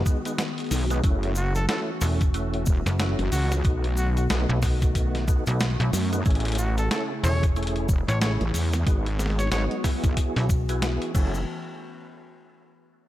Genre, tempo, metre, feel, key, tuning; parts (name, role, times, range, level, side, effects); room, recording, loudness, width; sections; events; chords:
glitch hop; 92 BPM; 4/4; swing 60% on 16ths; F# dorian; A4 = 440 Hz
warbly tape-like pad; sustained chords; 0.0-11.4 s; C#3 to G#4; -34 LUFS; left 1 dB; chorus, built-in reverb, phaser, sidechain pumping
percussive tonewheel organ; stabs; 0.0-11.4 s; G#3 to A4; -32 LUFS; equal; chorus vibrato, fast rotary speaker, sidechain pumping, tape echo
slap-like FM bass; bass; 0.0-11.0 s; E1 to B1; -24 LUFS; equal
electronic kick drum; drums; 0.1-11.3 s; -22 LUFS; equal; small room ambience
cabasa; percussion; 0.1-11.4 s; -40 LUFS; left 3 dB
boom bap sampler-style drum kit; drums; 0.3-11.3 s; crash cymbal, hi-hat, snare drum; -31 LUFS; equal; small room ambience
wobble bass; bass; 0.7-11.4 s; E1 to F#2; -24 LUFS; equal; chorus
warm trumpet; melody; 1.4-9.6 s; F#4 to C#5; -33 LUFS; equal; vintage 12-bit sampler grit, tape echo
light reverb; dark, warm production; -22 LUFS; side -14 dB against mid
0.0-11.5 A section; 11.5-13.1 B section
drop 0.0-11.5
0.0 G#m7; 1.0 F#m7; 3.6 B7; 6.3 Amaj7; 8.9 G#m7; 10.2 Eadd9; 11.1 F#m7; 11.5 N.C.